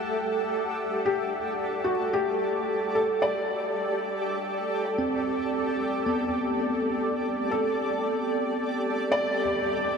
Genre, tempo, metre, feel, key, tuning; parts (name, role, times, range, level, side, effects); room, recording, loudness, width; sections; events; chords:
ambient; 56 BPM; 4/4; straight; G major; A4 = 439 Hz
felt-muted upright piano; melody; 0.0-10.0 s; F#4 to D5; -30 LUFS; left 1 dB; ping-pong delay
granular cloud pad; sustained chords; 0.0-10.0 s; G4 to F#5; -27 LUFS; equal; built-in reverb, tremolo
bell-like tine electric piano; arpeggios; 0.0-10.0 s; B3 to A4; -31 LUFS; right 2 dB; ping-pong delay
wet huge ambient reverb, RT60 9.7 s; -25 LUFS; side -6 dB against mid
0.0-10.0 A section
0.0 Gsus2